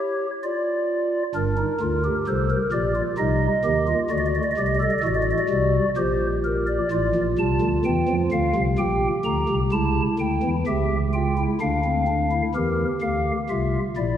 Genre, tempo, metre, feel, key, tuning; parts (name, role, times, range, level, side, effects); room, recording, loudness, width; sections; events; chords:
classical, baroque-style 3-part fugue for pipe organ; 64 BPM; 3/4; straight; A4 = 439 Hz
pipe organ, stopped flute; solo; 0.0-14.2 s; G1 to Bb5; -20 LUFS; equal
wet church reverb, RT60 2.6 s; -20 LUFS; side -10 dB against mid
0.0-12.6 A section; 12.6-14.2 B section
0.4 Dm/F; 1.4 Gm; 3.2 Cmadd11; 4.1 D7; 6.0 Gm/Bb; 6.9 Dm/A; 8.8 Bb69; 9.7 A7/C#; 11.6 Dm; 12.6 Edim